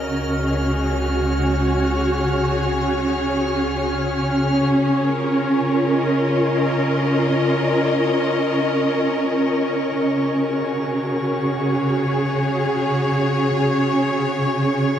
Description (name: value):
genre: ambient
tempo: free time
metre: none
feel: none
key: Db major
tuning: A4 = 440 Hz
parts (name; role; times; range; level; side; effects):
- dark symphonic string section; sustained chords; 0.0-15.0 s; Db3 to Eb5; -18 LUFS; equal; shimmer reverb
- deep rumbling drone; bass; 0.0-4.7 s; Db2; -26 LUFS; equal; built-in reverb
- drifting glass-harmonics texture; texture; 0.0-15.0 s; Db6 to F6; -33 LUFS; left 1 dB; chorus, built-in reverb, shimmer reverb
room: wet cathedral reverb, RT60 7.4 s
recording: in a vast, echoing space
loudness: -18 LUFS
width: side -9 dB against mid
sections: 0.0-4.7 A section; 4.7-15.0 B section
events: fade-in on synth texture 4.7-15.0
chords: 0.0 Gbsus2/Db; 4.7 Db6; 9.9 Gbsus2/Db